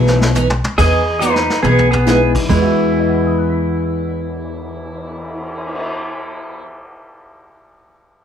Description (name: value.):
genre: country, western swing.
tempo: 140 BPM.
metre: 4/4.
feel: swing 66% on 8ths.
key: E major.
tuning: A4 = 440 Hz.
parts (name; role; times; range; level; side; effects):
pedal steel guitar; melody; 0.0-6.6 s; B2 to D#5; -19 LUFS; left 3 dB; plate reverb.
hollow-body jazz guitar; second line; 0.0-6.6 s; G#3 to G#4; -22 LUFS; right 4 dB; none.
dark upright piano; accompaniment; 0.0-7.6 s; E2 to B6; -24 LUFS; left 6 dB; none.
picked steel-string acoustic guitar; accompaniment; 0.0-6.7 s; E3 to G#4; -20 LUFS; right 4 dB; none.
upright bass; bass; 0.0-6.6 s; B1 to E2; -19 LUFS; equal; none.
vintage brush drum kit; drums; 0.1-5.8 s; brushed snare drum, crash cymbal, cymbal swell, hi-hat, kick drum, snare drum, toms; -23 LUFS; equal; none.
room: moderate studio reverb, RT60 0.6 s.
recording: none.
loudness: -13 LUFS.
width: side -8 dB against mid.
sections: 0.8-2.5 A section; 2.5-5.9 B section.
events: drum fill 0.0-0.8, 1.2-2.1.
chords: 0.0 Emaj7.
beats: 0.35 | 0.78 1.21 1.64 2.07 | 2.50 2.93 3.35 3.78 | 4.21 4.64 5.07 5.50.